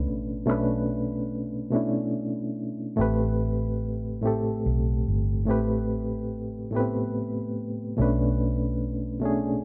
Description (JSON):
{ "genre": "slow six-eight R&B", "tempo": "48 BPM (dotted quarters)", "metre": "6/8", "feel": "straight", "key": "unclear", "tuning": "A4 = 440 Hz", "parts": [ { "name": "reed electric piano", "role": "accompaniment", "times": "0.0-9.6 s", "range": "A2 to B4", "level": "-29 LUFS", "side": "equal", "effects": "overdrive, fast tremolo" }, { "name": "vintage muted fingered electric bass", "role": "bass", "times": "0.0-9.6 s", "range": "G1 to B1", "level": "-31 LUFS", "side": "equal", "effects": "none" } ], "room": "moderate echo chamber reverb, RT60 2.3 s", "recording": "nothing above 10.4 kHz", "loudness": "-27 LUFS", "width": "mono", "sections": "0.0-9.6 A section", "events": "none", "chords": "0.0 Bm9; 3.0 Am9; 8.0 Bm9", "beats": "| 0.47 1.72 | 2.97 4.22 | 5.47 6.72 | 7.97 9.22" }